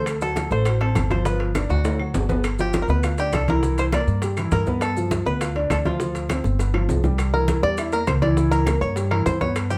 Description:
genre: Afro-Cuban jazz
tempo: 202 BPM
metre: 4/4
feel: straight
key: G mixolydian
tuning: A4 = 439 Hz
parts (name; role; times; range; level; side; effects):
- bluegrass banjo; melody; 0.0-9.8 s; F4 to D5; -28 LUFS; equal; plate reverb
- warm grand piano; accompaniment; 0.0-9.8 s; E3 to F#5; -28 LUFS; equal; none
- upright bass; bass; 0.0-9.8 s; G1 to G2; -25 LUFS; equal; none
- bongos; percussion; 0.1-9.8 s; none; -35 LUFS; equal; none
- claves; percussion; 0.1-9.7 s; none; -39 LUFS; equal; none
- congas; percussion; 0.1-9.8 s; none; -31 LUFS; equal; none
- maracas; percussion; 0.1-9.8 s; none; -44 LUFS; equal; none
- timbales; percussion; 0.1-9.7 s; none; -36 LUFS; equal; none
room: moderate studio reverb, RT60 0.6 s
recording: none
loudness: -22 LUFS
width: mono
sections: 0.0-2.4 A section; 2.4-9.8 A section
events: drum fill 1.7-2.4, 6.3-7.2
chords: 0.1 D7; 1.3 G7; 1.8 D; 2.4 G7; 3.6 C9; 4.8 G9; 6.0 Dm7; 6.6 G7; 7.2 C9; 8.4 C#dim7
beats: | 0.07 0.36 0.66 0.96 | 1.25 1.55 1.85 2.14 | 2.44 2.74 3.03 3.33 | 3.63 3.92 4.22 4.52 | 4.81 5.11 5.41 5.70 | 6.00 6.30 6.59 6.89 | 7.19 7.48 7.78 8.07 | 8.37 8.67 8.96 9.26 | 9.56

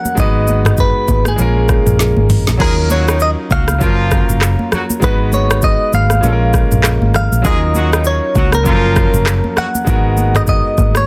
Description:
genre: afrobeats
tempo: 99 BPM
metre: 4/4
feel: swing 58% on 16ths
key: unclear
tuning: A4 = 440 Hz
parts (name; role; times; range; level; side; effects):
- direct-recorded clean electric guitar; melody; 0.0-11.1 s; Ab4 to Gb5; -21 LUFS; equal; digital delay
- clear concert grand piano; accompaniment; 0.0-11.1 s; F3 to Cb5; -23 LUFS; equal; none
- afro-pop drum kit; drums; 0.1-11.1 s; crash cymbal, handclaps, hi-hat, kick drum, rim click, shaker, snare drum, toms; -18 LUFS; equal; overdrive
- congas; percussion; 0.1-11.1 s; none; -26 LUFS; equal; none
- vintage muted fingered electric bass; bass; 0.2-11.0 s; Gb1 to Eb2; -17 LUFS; equal; none
- warm horn section; second line; 2.6-9.7 s; Eb3 to Ab4; -25 LUFS; equal; digital delay
room: little or no reverb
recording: dense, heavily limited modern master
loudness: -13 LUFS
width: mono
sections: 0.0-11.1 A section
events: drum fill 2.0-2.6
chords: 0.2 Abm7; 1.4 Bbm7; 2.6 Ebm9; 3.8 Gbmaj7; 5.0 Abm7; 6.2 Bbm7; 7.4 Ebm9; 8.7 Gbmaj7; 9.9 Abm9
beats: | 0.17 0.78 1.39 1.99 | 2.60 3.21 3.81 4.42 | 5.02 5.63 6.24 6.84 | 7.45 8.05 8.66 9.27 | 9.87 10.48

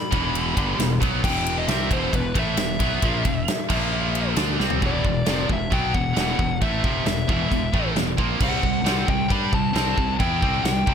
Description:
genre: heavy metal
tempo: 134 BPM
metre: 4/4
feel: straight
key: E minor from 4.8 s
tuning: A4 = 440 Hz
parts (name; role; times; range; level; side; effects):
- dark smooth lead guitar; melody; 0.0-10.9 s; B4 to B5; -28 LUFS; left 3 dB; overdrive
- heavy high-gain guitar; riff; 0.1-10.9 s; E2 to G4; -28 LUFS; right 14 dB; distortion
- scooped high-gain guitar; riff; 0.1-10.9 s; E2 to G4; -29 LUFS; left 13 dB; distortion
- scooped high-gain guitar; riff; 0.1-10.9 s; E2 to G4; -30 LUFS; equal; distortion
- fuzz fingered electric bass; bass; 0.1-10.9 s; E1 to G2; -27 LUFS; equal; overdrive
- big rock drum kit; drums; 0.1-10.9 s; china cymbal, crash cymbal, kick drum, ride cymbal, snare drum, toms; -24 LUFS; equal; none
room: studio reverb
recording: none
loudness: -20 LUFS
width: side -7 dB against mid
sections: 0.0-4.8 A section; 4.8-10.9 B section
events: drum fill 4.6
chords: 0.0 Em; 3.7 A#5; 4.4 Gsus24; 4.8 E5; 8.4 C5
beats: 0.34 0.79 | 1.23 1.68 2.13 2.57 | 3.02 3.47 3.92 4.36 | 4.81 5.26 5.71 6.16 | 6.61 7.05 7.50 7.95 | 8.40 8.85 9.30 9.75 | 10.20 10.65

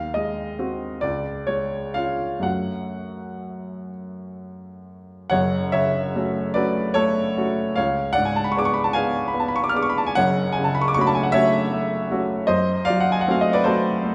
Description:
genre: classical, romantic nocturne for solo piano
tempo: 40-53 BPM (dotted quarters)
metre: 12/8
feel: rubato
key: F# minor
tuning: A4 = 440 Hz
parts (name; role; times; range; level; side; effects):
- warm upright piano; solo; 0.0-14.1 s; F#1 to E#6; -23 LUFS; equal; none
room: moderate recital hall reverb, RT60 1.6 s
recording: none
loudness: -22 LUFS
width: mono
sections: 0.0-5.3 A section; 5.3-14.1 B section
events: none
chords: 0.0 G#7/D#; 1.0 C#; 2.4 F#m; 7.8 C#7b9; 10.2 F#m; 12.5 F#dim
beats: 1.02 2.44 3.90 | 5.31 6.55 7.76 8.96 | 10.17 11.34 12.49 13.65

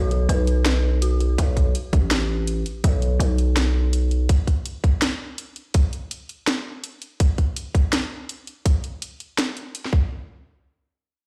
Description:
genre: half-time drum and bass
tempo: 165 BPM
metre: 4/4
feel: swing 59% on 16ths, half-time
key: unclear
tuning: A4 = 442 Hz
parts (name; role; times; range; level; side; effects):
- dark detuned synth bell; arpeggios; 0.0-1.4 s; F#4 to B4; -34 LUFS; equal; chorus, low-pass filter, digital delay
- growling 808-style bass; bass; 0.0-4.3 s; A1 to B1; -22 LUFS; equal; none
- drum and bass drum kit; drums; 0.1-9.9 s; hi-hat, snare drum; -28 LUFS; equal; none
- electronic kick drum; drums; 1.4-10.0 s; none; -20 LUFS; equal; none
room: little or no reverb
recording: played on a big sound system in a bare room, stone room reverb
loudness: -22 LUFS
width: mono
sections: 0.0-10.1 A section; 10.1-11.3 B section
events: filter sweep on synth bell 0.0-1.4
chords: 0.0 B5; 4.3 N.C.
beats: 0.29 0.65 1.02 | 1.38 1.74 2.11 2.47 | 2.83 3.20 3.56 3.92 | 4.29 4.65 5.02 5.38 | 5.74 6.11 6.47 6.83 | 7.20 7.56 7.92 8.29 | 8.65 9.02 9.38 9.74

